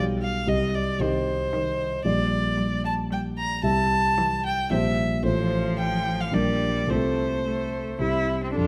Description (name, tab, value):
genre	quick classical-period movement for piano quartet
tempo	106-115 BPM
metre	3/4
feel	rubato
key	F major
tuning	A4 = 440 Hz
part	rich violin	melody	0.0-8.7 s	F4 to Bb5	-29 LUFS	equal	none
part	rich cello	second line	0.0-8.7 s	C3 to E4	-33 LUFS	equal	none
part	dark concert grand piano	accompaniment	0.0-8.7 s	A1 to F5	-27 LUFS	equal	none
part	warm viola	accompaniment	8.6-8.7 s	A4	-32 LUFS	equal	none
room	moderate recital hall reverb, RT60 1.5 s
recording	close, detailed microphones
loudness	-25 LUFS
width	mono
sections	0.0-8.6 A section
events	none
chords	0.5 Cm; 2.1 Gm/Bb; 3.6 C; 4.7 C7/Bb; 5.2 F/A; 6.3 Gm/Bb; 6.9 F/C; 8.0 C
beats	| 0.49 1.01 1.54 | 2.06 2.59 3.12 | 3.65 4.18 4.72 | 5.25 5.78 6.33 | 6.89 7.45 8.01 | 8.57